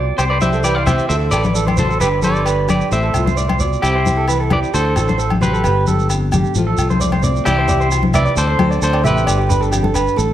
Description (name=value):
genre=highlife guitar band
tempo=132 BPM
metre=4/4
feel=straight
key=C major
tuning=A4 = 438 Hz
part: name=fingerpicked steel-string acoustic guitar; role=accompaniment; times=0.0-10.3 s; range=F2 to G4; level=-23 LUFS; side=left 4 dB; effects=none
part: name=electric guitar through a small old amp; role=arpeggios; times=0.0-10.3 s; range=G4 to E5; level=-20 LUFS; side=right 5 dB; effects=slapback echo
part: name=fingered electric bass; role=bass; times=0.0-10.3 s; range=G1 to D2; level=-19 LUFS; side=equal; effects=none
part: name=semi-hollow electric guitar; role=melody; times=0.2-9.9 s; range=E4 to F5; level=-20 LUFS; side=equal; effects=spring reverb, slapback echo
part: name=agogo bells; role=percussion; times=0.2-10.1 s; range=none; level=-28 LUFS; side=left 4 dB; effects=none
part: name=shekere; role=percussion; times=0.2-10.3 s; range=none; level=-25 LUFS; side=right 2 dB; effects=none
part: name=congas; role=percussion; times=0.4-9.9 s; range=none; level=-20 LUFS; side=left 2 dB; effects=none
room=moderate studio reverb, RT60 0.7 s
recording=none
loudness=-13 LUFS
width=side -12 dB against mid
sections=0.0-7.5 A section; 7.5-10.3 B section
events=none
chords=0.2 C; 1.1 D7; 2.0 G; 2.9 F/A; 3.8 C; 4.7 D7; 5.6 G; 6.6 F/A; 7.5 C; 8.4 D7; 9.3 G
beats=| 0.19 0.65 1.10 1.56 | 2.01 2.47 2.92 3.38 | 3.83 4.29 4.74 5.20 | 5.65 6.10 6.56 7.01 | 7.46 7.92 8.37 8.82 | 9.27 9.72 10.18